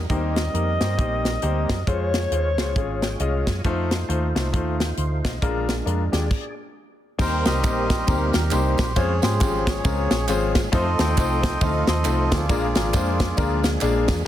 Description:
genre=uptempo gospel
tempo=136 BPM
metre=4/4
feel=swing 60% on 8ths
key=Eb major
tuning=A4 = 440 Hz
part: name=percussive tonewheel organ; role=sustained chords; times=0.0-14.2 s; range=F3 to G5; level=-30 LUFS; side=right 2 dB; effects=slow rotary speaker, overdrive, chorus vibrato
part: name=hollow-body short-scale fingered electric bass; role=bass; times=0.0-14.2 s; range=Ab1 to Ab2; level=-25 LUFS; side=right 1 dB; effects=none
part: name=breathy alto saxophone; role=melody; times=0.1-3.5 s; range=Db5 to Eb5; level=-27 LUFS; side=left 1 dB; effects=none
part: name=bright concert grand piano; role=accompaniment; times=0.1-14.3 s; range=Bb2 to C6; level=-27 LUFS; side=left 5 dB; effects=none
part: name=tight funk drum kit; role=drums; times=0.1-14.2 s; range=crash cymbal, hi-hat, kick drum, ride cymbal, snare drum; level=-24 LUFS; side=equal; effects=none
part: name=melodica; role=melody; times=7.2-13.6 s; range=F4 to G5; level=-27 LUFS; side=right 1 dB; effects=slapback echo
part: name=tambourine and handclaps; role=percussion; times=7.2-14.2 s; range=none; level=-37 LUFS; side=right 6 dB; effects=none
room=light reverb, studio ambience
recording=dense, heavily limited modern master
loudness=-20 LUFS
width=side -12 dB against mid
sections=0.1-7.2 A section; 7.2-14.3 B section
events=tonewheel organ fill 2.8-3.6; stop 6.3-7.2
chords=0.1 Eb6; 1.9 Dbmaj7; 3.6 F7; 5.4 Bb7; 7.2 Eb6; 9.0 Dbmaj7; 10.7 F7; 12.5 Bb7

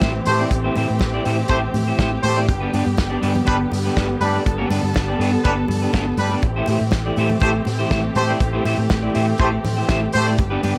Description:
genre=disco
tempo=122 BPM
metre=4/4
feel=straight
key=A minor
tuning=A4 = 439 Hz
part: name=electric guitar at the edge of break-up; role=accompaniment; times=0.0-10.8 s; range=A3 to D5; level=-26 LUFS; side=equal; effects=none
part: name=dark studio string section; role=sustained chords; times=0.0-10.8 s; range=D3 to A4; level=-27 LUFS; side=equal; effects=none
part: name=hollow-body short-scale fingered electric bass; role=bass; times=0.0-10.7 s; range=G1 to A2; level=-26 LUFS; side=equal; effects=none
part: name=warm soul drum kit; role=drums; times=0.0-10.8 s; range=hi-hat, kick drum, snare drum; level=-26 LUFS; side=equal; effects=none
part: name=congas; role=percussion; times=0.0-10.8 s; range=none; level=-32 LUFS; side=equal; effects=none
part: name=clear horn section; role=stabs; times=0.3-10.3 s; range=G3 to C5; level=-24 LUFS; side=equal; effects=none
room=light reverb, studio ambience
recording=none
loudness=-19 LUFS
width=mono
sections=0.0-10.8 A section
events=none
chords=0.0 Am7; 2.5 G; 6.4 Am7

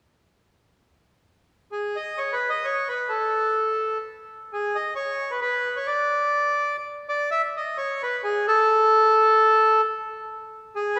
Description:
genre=musette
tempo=131 BPM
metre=3/4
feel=swing 54% on 8ths, rubato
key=unclear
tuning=A4 = 437 Hz
part: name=accordion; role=solo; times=1.7-11.0 s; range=G#4 to E5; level=-23 LUFS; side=equal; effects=none
room=wet church reverb, RT60 2.9 s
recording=recorded in a church or concert hall, studio ambience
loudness=-23 LUFS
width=mono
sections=1.7-7.3 A section; 7.3-11.0 B section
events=none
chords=none

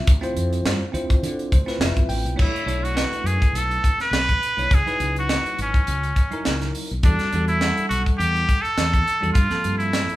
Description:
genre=electric jazz fusion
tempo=104 BPM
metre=4/4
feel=swing 55% on 16ths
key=unclear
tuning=A4 = 440 Hz
part: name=bell-like tine electric piano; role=accompaniment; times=0.0-10.2 s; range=F3 to G5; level=-28 LUFS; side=equal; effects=fast stereo tremolo
part: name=mellow fretless electric bass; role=bass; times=0.1-10.1 s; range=F1 to D3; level=-26 LUFS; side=equal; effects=none
part: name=tight funk drum kit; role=drums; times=0.1-10.2 s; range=crash cymbal, hi-hat, kick drum, snare drum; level=-21 LUFS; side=equal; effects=none
part: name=trumpet with straight mute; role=melody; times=2.4-10.2 s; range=C#4 to B4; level=-23 LUFS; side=equal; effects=none
room=moderate large studio reverb, RT60 1.1 s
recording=band playing live in one room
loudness=-19 LUFS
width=side -15 dB against mid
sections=0.0-2.4 A section; 2.4-10.2 B section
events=tine electric piano fill 1.2-2.4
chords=0.0 Dm9; 2.4 Bm11; 4.7 C#m11; 7.0 Em11; 9.4 Gm11

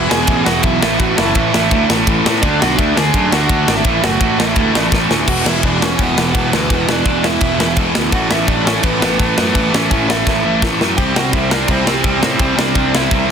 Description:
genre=punk rock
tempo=168 BPM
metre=4/4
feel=straight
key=unclear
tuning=A4 = 444 Hz
part: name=dark smooth lead guitar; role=melody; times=0.0-13.3 s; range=B3 to G#5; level=-20 LUFS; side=right 2 dB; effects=overdrive
part: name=cranked stack guitar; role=riff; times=0.0-13.3 s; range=E2 to D4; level=-19 LUFS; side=right 14 dB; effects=overdrive
part: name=fuzz guitar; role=riff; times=0.0-5.3, 11.0-13.3 s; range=E2 to D4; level=-23 LUFS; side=right 1 dB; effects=distortion
part: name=sludgy distorted guitar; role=riff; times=0.0-13.3 s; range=E2 to D4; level=-20 LUFS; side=left 16 dB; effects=overdrive
part: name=fuzz picked electric bass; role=bass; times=0.0-13.3 s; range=E1 to A2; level=-20 LUFS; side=equal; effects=overdrive
part: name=tight metal drum kit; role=drums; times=0.1-13.2 s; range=crash cymbal, kick drum, ride cymbal, snare drum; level=-17 LUFS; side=left 1 dB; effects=soft clipping on kick
room=light reverb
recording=dense, heavily limited modern master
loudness=-12 LUFS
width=side -7 dB against mid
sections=0.0-5.3 A section; 5.3-13.3 B section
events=drum fill 4.9-5.3, 10.3-11.0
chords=0.0 E; 0.8 A5; 2.4 D; 3.9 A5; 5.3 E5; 8.1 A; 11.0 C

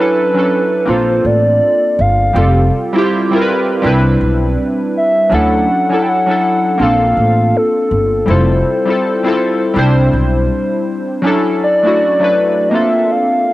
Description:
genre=hip hop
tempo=81 BPM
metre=4/4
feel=swing 62% on 16ths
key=unclear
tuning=A4 = 440 Hz
part: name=warbly nostalgic lead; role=melody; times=0.0-13.5 s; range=A4 to G5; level=-14 LUFS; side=equal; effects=chorus, low-pass filter
part: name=warm analog keys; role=accompaniment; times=0.0-13.5 s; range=F#3 to C5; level=-14 LUFS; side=equal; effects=chorus, low-pass filter, cassette tape
part: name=upright bass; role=bass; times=0.9-10.5 s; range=F1 to D2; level=-14 LUFS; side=equal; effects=none
room=light reverb, studio reverb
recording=home recording on cassette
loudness=-11 LUFS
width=side -16 dB against mid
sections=0.0-13.5 A section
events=none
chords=0.0 Dmaj9; 0.9 Bbmaj9; 2.4 Fmaj9; 3.8 Cmaj9; 5.3 Dmaj9; 6.8 Bbmaj9; 8.3 Fmaj9; 9.8 Cmaj9; 11.2 Dmaj9; 12.7 Bbmaj9

